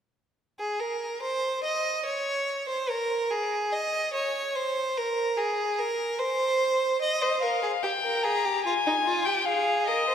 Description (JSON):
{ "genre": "classical, baroque-style fugue for string quartet", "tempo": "73 BPM", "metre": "4/4", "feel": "straight", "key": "unclear", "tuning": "A4 = 441 Hz", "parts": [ { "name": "clear violin", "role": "second line", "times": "0.6-10.1 s", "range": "Eb4 to Eb5", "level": "-26 LUFS", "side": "right 1 dB", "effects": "none" }, { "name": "rich violin", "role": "melody", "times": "7.2-10.1 s", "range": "Eb5 to Bb5", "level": "-25 LUFS", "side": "left 4 dB", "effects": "none" } ], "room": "wet concert hall reverb, RT60 2.1 s", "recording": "none", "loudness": "-25 LUFS", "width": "side -8 dB against mid", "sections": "0.4-10.1 A section", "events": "none", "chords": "0.4 N.C.; 7.0 Eb; 8.6 Fm7" }